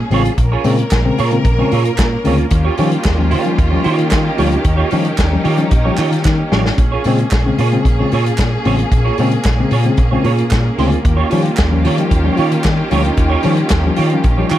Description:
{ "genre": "disco", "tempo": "112 BPM", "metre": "4/4", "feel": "straight", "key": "Bb dorian", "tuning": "A4 = 441 Hz", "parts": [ { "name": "semi-hollow electric guitar", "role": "accompaniment", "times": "0.0-14.6 s", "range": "F4 to Db5", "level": "-20 LUFS", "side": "right 8 dB", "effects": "ensemble chorus" }, { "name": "clear studio string section", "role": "sustained chords", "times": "0.0-14.6 s", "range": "Eb3 to Bb4", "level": "-20 LUFS", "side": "equal", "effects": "none" }, { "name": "tine electric piano", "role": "accompaniment", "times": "0.1-14.5 s", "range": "Bb2 to Db4", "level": "-19 LUFS", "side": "left 4 dB", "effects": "overdrive" }, { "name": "picked electric bass with an envelope filter", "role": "bass", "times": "0.1-14.6 s", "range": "A1 to Eb3", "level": "-17 LUFS", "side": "equal", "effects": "none" }, { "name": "vintage drum kit", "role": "drums", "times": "0.1-14.6 s", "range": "hi-hat, kick drum, snare drum", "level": "-18 LUFS", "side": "equal", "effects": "none" }, { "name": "group handclap", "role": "percussion", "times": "0.9-14.6 s", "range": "none", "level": "-27 LUFS", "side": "right 6 dB", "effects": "none" } ], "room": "small room ambience", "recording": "dark, warm production", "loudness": "-12 LUFS", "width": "side -13 dB against mid", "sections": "0.0-14.6 A section", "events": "drum fill 6.3-6.8", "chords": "0.0 Bbm7; 2.5 Eb9; 6.8 Bbm7; 11.0 Eb9", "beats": "| 0.38 0.91 1.45 1.98 | 2.52 3.05 3.58 4.12 | 4.65 5.18 5.72 6.25 | 6.79 7.32 7.85 8.38 | 8.92 9.45 9.98 10.52 | 11.05 11.58 12.11 12.65 | 13.18 13.71 14.25" }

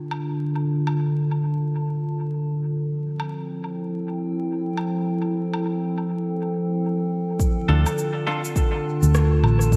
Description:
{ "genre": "ambient dub", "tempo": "103 BPM", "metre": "4/4", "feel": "swing 60% on 16ths", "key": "D minor", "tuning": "A4 = 444 Hz", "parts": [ { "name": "warbly tape-like pad", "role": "sustained chords", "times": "0.0-9.8 s", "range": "D3 to A5", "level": "-26 LUFS", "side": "equal", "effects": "chorus, built-in reverb" }, { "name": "electronic woodblock, shaker and rim click", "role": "drums", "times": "0.1-9.8 s", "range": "none", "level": "-36 LUFS", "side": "equal", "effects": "dub echo" }, { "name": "electronic kick drum", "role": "drums", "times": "7.4-9.8 s", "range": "none", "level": "-23 LUFS", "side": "equal", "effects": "overdrive" }, { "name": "semi-hollow electric guitar", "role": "stabs", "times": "7.7-8.4 s", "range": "D4 to A4", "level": "-32 LUFS", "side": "equal", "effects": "subtle chorus, dub echo" }, { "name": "hollow-body short-scale fingered electric bass", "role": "bass", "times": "7.7-9.8 s", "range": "A1 to D2", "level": "-19 LUFS", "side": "equal", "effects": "none" } ], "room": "moderate lush hall reverb, RT60 1.8 s", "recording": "dreamy mix soaked in reverb, vinyl crackle", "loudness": "-24 LUFS", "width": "mono", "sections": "0.0-7.4 A section; 7.4-9.8 B section", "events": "filter sweep on ambient pad 0.0-7.4", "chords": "0.0 Dm; 2.7 Fmaj7; 7.4 Dm", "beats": "| 0.40 0.99 1.57 2.15 | 2.73 3.32 3.90 4.48 | 5.06 5.65 6.23 6.81 | 7.39 7.98 8.56 9.14 | 9.72" }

